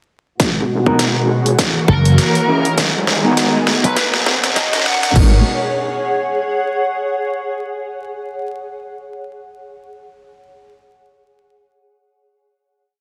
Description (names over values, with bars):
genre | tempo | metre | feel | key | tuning
glitch hop | 101 BPM | 4/4 | swing 57% on 16ths | G# minor | A4 = 440 Hz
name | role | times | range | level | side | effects
rich studio string section | sustained chords | 0.4-5.4 s | B2 to F#4 | -23 LUFS | equal | sidechain pumping, low-pass filter
wobble bass | bass | 0.4-5.4 s | D#1 to E2 | -23 LUFS | equal | chorus, high-pass filter
dubstep drum kit | drums | 0.4-5.3 s | crash cymbal, hi-hat, snare drum | -21 LUFS | equal | high-pass filter on snare, high-pass filter on hats, high-pass filter on cymbals, high-pass filter on room
electronic kick drum | drums | 0.4-5.3 s | none | -19 LUFS | equal | high-pass filter on kick, high-pass filter on room
riser | sound effects | 1.8-5.2 s | none | -29 LUFS | equal | none
granular cloud pad | texture | 1.4-7.5 s | G#4 to F#5 | -25 LUFS | equal | built-in reverb, sidechain pumping
mellow electric guitar | stabs | 0.9-5.4 s | B3 to A#4 | -22 LUFS | equal | sidechain pumping, low-pass filter, digital delay
fuzz lead guitar | melody | 1.9-5.1 s | A#4 to F#5 | -24 LUFS | equal | distortion, vintage 12-bit sampler grit, digital delay
slap bass with an envelope filter | bass | 1.9-4.7 s | F#1 to D#2 | -15 LUFS | equal | none
room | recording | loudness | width
moderate lush hall reverb, RT60 2.1 s | dense, heavily limited modern master, vinyl crackle, high-pass filter | -16 LUFS | mono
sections
0.4-5.2 build; 5.2-7.5 final chord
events
build-up 0.4-5.2; drum fill 0.4-5.2; filter sweep on clean electric guitar 0.4-5.2; filter sweep on string section 0.4-5.2; filter sweep 0.4-5.2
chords
0.4 G#m7; 1.6 F#7; 2.8 Emaj7; 4.0 D#m7; 5.2 G#m7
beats
| 0.40 0.99 1.59 2.18 | 2.78 3.37 3.97 4.56 | 5.15 5.75 6.34 6.94